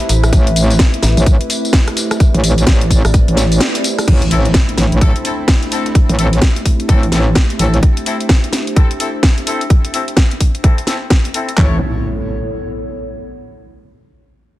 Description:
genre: bass house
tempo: 128 BPM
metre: 4/4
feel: swing 61% on 16ths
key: A minor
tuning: A4 = 440 Hz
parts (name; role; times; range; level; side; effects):
- sweeping resonant pad; sustained chords; 0.0-11.8 s; A2 to E4; -25 LUFS; right 2 dB; chorus, sidechain pumping
- dusty soul sampler-style drum kit; drums; 0.0-7.8 s; hi-hat, snare drum; -30 LUFS; right 2 dB; none
- garage drum kit; drums; 0.0-11.6 s; crash cymbal, hi-hat, rim click, snare drum, tambourine; -18 LUFS; left 1 dB; studio reverb
- warbly tape-like pad; texture; 0.0-13.4 s; B3 to E5; -26 LUFS; left 1 dB; chorus, built-in reverb, sidechain pumping
- metallic FM bass; bass; 0.1-3.3 s; A1; -13 LUFS; equal; overdrive, sidechain pumping
- metallic wobble bass; bass; 0.3-7.8, 11.6-11.8 s; A1; -13 LUFS; equal; chorus, tube saturation, sidechain pumping
- garage drum kit; drums; 0.3-11.7 s; handclaps, kick drum; -11 LUFS; equal; studio reverb
- impact; sound effects; 4.1-6.0, 11.7-13.5 s; none; -24 LUFS; equal; none
- bright horn section; stabs; 4.3-11.8 s; A3 to C#5; -23 LUFS; left 3 dB; sidechain pumping, low-pass filter, digital delay
room: digital ambience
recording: dense, heavily limited modern master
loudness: -11 LUFS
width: side -16 dB against mid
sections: 0.0-4.1 A section; 4.1-11.6 B section; 11.6-13.5 C section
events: drop 0.0-4.1; break 3.6-4.1; band accent 3.6; fade-out on ambient pad 4.1-11.6; impact 4.1-6.0; filter sweep on horn section 4.1-11.6; filter sweep on analog synth pad 4.1-11.6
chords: 0.0 Am; 11.6 A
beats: | 0.33 0.80 1.26 1.73 | 2.20 2.67 3.14 3.61 | 4.08 4.55 5.01 5.48 | 5.95 6.42 6.89 7.36 | 7.83 8.30 8.77 9.23 | 9.70 10.17 10.64 11.11 | 11.58 12.05 12.52 12.98

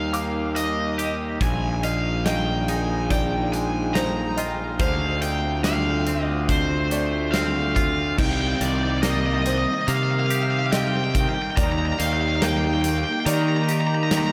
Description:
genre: post-rock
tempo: 71 BPM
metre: 4/4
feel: straight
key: C minor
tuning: A4 = 440 Hz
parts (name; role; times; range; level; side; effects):
- cranked stack guitar; melody; 0.0-14.3 s; C5 to Bb5; -29 LUFS; equal; overdrive, analog delay
- warbly tape-like pad; sustained chords; 0.0-14.3 s; C3 to Bb4; -34 LUFS; equal; chorus, built-in reverb
- twangy electric guitar; arpeggios; 0.0-14.3 s; Bb2 to G4; -34 LUFS; equal; lush chorus, analog delay
- fuzz picked electric bass; bass; 0.0-14.3 s; Bb1 to Eb3; -27 LUFS; equal; overdrive
- felt-muted upright piano; arpeggios; 0.1-14.1 s; Eb4 to D6; -36 LUFS; equal; analog delay
- big rock drum kit; drums; 0.1-14.3 s; crash cymbal, hi-hat, kick drum, snare drum; -30 LUFS; equal; none
room: moderate huge ambient reverb, RT60 7.2 s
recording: dreamy mix soaked in reverb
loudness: -23 LUFS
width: mono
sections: 0.0-8.2 A section; 8.2-14.3 B section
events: none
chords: 0.0 Ebmaj7; 1.4 Bb7sus4; 4.8 Dm7; 8.2 Cm7; 11.6 Ebmaj7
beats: 0.56 | 1.41 2.25 3.10 3.95 | 4.80 5.64 6.49 7.34 | 8.19 9.03 9.88 10.73 | 11.57 12.42 13.27 14.11

